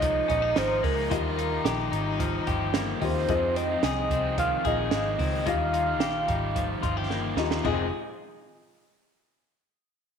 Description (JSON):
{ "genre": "jangly indie pop", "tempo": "110 BPM", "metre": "4/4", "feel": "straight", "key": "F minor", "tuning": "A4 = 438 Hz", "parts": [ { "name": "warbly nostalgic lead", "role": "melody", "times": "0.0-7.1 s", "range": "Bb4 to F5", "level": "-28 LUFS", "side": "right 1 dB", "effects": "chorus, slapback echo" }, { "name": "rich violin", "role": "second line", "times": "0.0-3.3 s", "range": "Eb4 to F4", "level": "-37 LUFS", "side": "left 10 dB", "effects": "none" }, { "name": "raw garage guitar", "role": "accompaniment", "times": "0.0-7.9 s", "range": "F2 to F4", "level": "-35 LUFS", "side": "right 11 dB", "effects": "overdrive" }, { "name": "warm upright piano", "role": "accompaniment", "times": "0.0-7.9 s", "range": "F4 to F5", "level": "-35 LUFS", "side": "left 10 dB", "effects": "none" }, { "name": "clean electric guitar", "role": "arpeggios", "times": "0.0-7.9 s", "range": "F2 to Ab4", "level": "-31 LUFS", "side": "left 10 dB", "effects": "slapback echo" }, { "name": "vintage muted picked electric bass", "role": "bass", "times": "0.0-7.9 s", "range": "F1 to F2", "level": "-32 LUFS", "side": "equal", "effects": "none" }, { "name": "compact cocktail drum kit", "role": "drums", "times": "0.0-7.8 s", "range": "crash cymbal, hi-hat, kick drum, snare drum, toms", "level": "-31 LUFS", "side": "right 4 dB", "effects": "none" } ], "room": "moderate echo chamber reverb, RT60 1.5 s, studio reverb", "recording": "1960s-style stereo with parts hard left and right", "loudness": "-24 LUFS", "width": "side -7 dB against mid", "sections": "0.0-7.6 A section; 7.6-9.8 B section", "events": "drum fill 7.1-7.6", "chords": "0.0 Dbadd9; 1.1 Ebadd9; 3.3 Fm7; 5.5 Ebadd9; 7.6 Fm7", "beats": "0.03 0.57 | 1.11 1.66 2.20 2.74 | 3.29 3.83 4.38 4.92 | 5.46 6.01 6.55 7.10 | 7.65" }